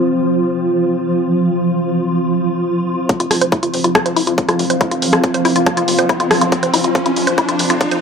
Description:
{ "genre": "psychedelic trance", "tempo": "140 BPM", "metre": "4/4", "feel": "straight", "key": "unclear", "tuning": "A4 = 440 Hz", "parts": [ { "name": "swarming drone", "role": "sustained chords", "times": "0.0-8.0 s", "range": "F3 to F4", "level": "-18 LUFS", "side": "right 1 dB", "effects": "built-in reverb, sidechain pumping" }, { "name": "deep dark ambient pad", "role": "texture", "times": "0.0-8.0 s", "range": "C4 to C6", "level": "-20 LUFS", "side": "left 1 dB", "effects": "chorus, built-in reverb, sidechain pumping" }, { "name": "drum and bass drum kit", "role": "drums", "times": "3.1-8.0 s", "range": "hi-hat, rim click", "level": "-18 LUFS", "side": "equal", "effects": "small room ambience" }, { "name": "electronic kick drum", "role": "drums", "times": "3.1-7.9 s", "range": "none", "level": "-16 LUFS", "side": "equal", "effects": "high-pass filter on kick, small room ambience" }, { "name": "riser", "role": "sound effects", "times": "4.7-8.0 s", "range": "none", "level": "-24 LUFS", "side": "equal", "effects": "none" }, { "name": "woody wave-folded pluck", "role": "riff", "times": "3.2-8.0 s", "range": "E4 to C5", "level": "-18 LUFS", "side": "moving between left 4 dB and right 4 dB", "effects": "chorus, auto-pan, sidechain pumping, ping-pong delay" }, { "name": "plucky analog bass", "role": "bass", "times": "3.2-8.0 s", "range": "F1 to F2", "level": "-26 LUFS", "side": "equal", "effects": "high-pass filter" } ], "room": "moderate lush hall reverb, RT60 1.6 s", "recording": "none", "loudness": "-13 LUFS", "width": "side -6 dB against mid", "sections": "0.0-3.1 A section; 3.1-8.0 B section", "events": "filter sweep on synth drone 0.0-3.1; build-up 3.1-8.0; filter sweep on synth arpeggio sound 3.1-8.0; riser 4.7-8.0; drum fill 6.5-8.0", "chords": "0.0 F5" }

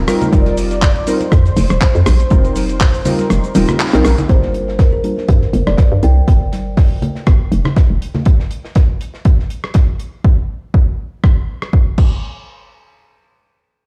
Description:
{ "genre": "deep house", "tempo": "121 BPM", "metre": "4/4", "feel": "swing 55% on 16ths", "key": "G minor", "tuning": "A4 = 441 Hz", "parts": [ { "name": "breathy flute-like synth lead", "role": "melody", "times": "0.0-3.8 s", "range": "C5 to D5", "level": "-27 LUFS", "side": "equal", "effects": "ensemble chorus, analog delay" }, { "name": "deep mellow chord stab", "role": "stabs", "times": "0.0-5.1 s", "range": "G3 to Bb4", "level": "-20 LUFS", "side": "equal", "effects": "chorus, sidechain pumping, analog delay" }, { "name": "hollow knocking FM bass", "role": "bass", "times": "0.0-8.0 s", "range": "Eb1 to G2", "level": "-17 LUFS", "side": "equal", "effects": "sidechain pumping" }, { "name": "dusty soul sampler-style drum kit", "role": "drums", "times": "0.1-12.1 s", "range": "cabasa, crash cymbal, handclaps, hi-hat, rim click", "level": "-25 LUFS", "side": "equal", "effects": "none" }, { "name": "modern studio drum kit", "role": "drums", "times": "0.1-10.1 s", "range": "hi-hat, snare drum", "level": "-36 LUFS", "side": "equal", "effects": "high-pass filter on hats, high-pass filter on snare, high-pass filter on room" }, { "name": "congas", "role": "percussion", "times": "0.2-8.2 s", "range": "none", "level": "-25 LUFS", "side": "equal", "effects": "none" }, { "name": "electronic kick drum", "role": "drums", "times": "0.3-12.1 s", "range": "none", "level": "-14 LUFS", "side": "equal", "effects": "none" }, { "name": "kalimba", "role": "melody", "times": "4.3-6.3 s", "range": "Bb4 to G5", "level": "-26 LUFS", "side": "equal", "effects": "analog delay" } ], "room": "small room reverb", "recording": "played on a big sound system in a bare room, stone room reverb", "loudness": "-14 LUFS", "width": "mono", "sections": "0.0-4.3 A section; 4.3-12.2 B section; 12.2-13.9 C section", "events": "drop 0.0-4.3; kick drops out 3.3-4.3; band accent 3.8; filter sweep on synth stab 4.3-6.3", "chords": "0.0 F9sus4; 4.3 Gm7; 12.0 N.C." }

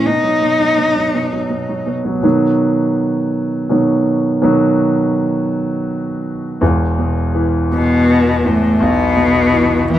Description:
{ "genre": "six-eight pop ballad", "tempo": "55 BPM (dotted quarters)", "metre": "6/8", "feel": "straight", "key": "unclear", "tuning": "A4 = 440 Hz", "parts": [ { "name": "rich cello", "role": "melody", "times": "0.0-1.9, 7.7-10.0 s", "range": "A2 to D#4", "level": "-14 LUFS", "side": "left 2 dB", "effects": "none" }, { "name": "warm concert grand piano", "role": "accompaniment", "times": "0.0-10.0 s", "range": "E1 to F#3", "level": "-15 LUFS", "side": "right 1 dB", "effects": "none" } ], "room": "wet studio reverb, RT60 0.6 s", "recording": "band playing live in one room", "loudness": "-13 LUFS", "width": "side -12 dB against mid", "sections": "0.0-2.2 A section; 2.2-6.6 B section; 6.6-10.0 C section", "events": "grand piano solo 2.2-6.6", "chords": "0.1 B; 6.6 E5" }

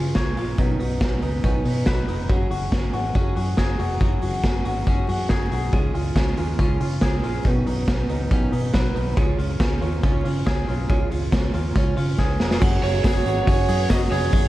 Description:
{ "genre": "jangly indie pop", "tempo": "140 BPM", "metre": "4/4", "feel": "straight", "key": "unclear", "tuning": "A4 = 441 Hz", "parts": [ { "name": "fingerpicked twelve-string acoustic guitar", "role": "accompaniment", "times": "0.0-12.6 s", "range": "B2 to C#5", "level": "-29 LUFS", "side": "right 3 dB", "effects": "none" }, { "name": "clean electric guitar", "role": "arpeggios", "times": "0.0-14.5 s", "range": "B2 to C#5", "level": "-29 LUFS", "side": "left 3 dB", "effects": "none" }, { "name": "vintage muted fingered electric bass", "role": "bass", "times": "0.0-14.5 s", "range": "E#1 to C#3", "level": "-26 LUFS", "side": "equal", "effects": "none" }, { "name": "raw garage drum kit", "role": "drums", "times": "0.1-14.4 s", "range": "crash cymbal, hi-hat, kick drum, snare drum", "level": "-22 LUFS", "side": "equal", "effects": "vintage 12-bit sampler grit" }, { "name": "combo organ", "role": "accompaniment", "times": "12.6-14.5 s", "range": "C#4 to C#5", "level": "-28 LUFS", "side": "right 3 dB", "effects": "none" }, { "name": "tambourine", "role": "percussion", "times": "12.6-14.4 s", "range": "none", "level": "-46 LUFS", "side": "right 5 dB", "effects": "none" }, { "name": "lead guitar through a small cranked amp", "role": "melody", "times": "12.8-14.5 s", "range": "C#5 to D#5", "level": "-26 LUFS", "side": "right 9 dB", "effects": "overdrive" } ], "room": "light reverb, studio reverb", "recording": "vinyl crackle", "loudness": "-19 LUFS", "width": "side -16 dB against mid", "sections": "0.0-12.6 A section; 12.6-14.5 B section", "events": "drum fill 12.2-12.6", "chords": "0.0 C#; 0.6 Badd9; 2.3 F#sus2; 5.7 C#; 7.4 Badd9; 9.2 C#; 12.6 F#sus2" }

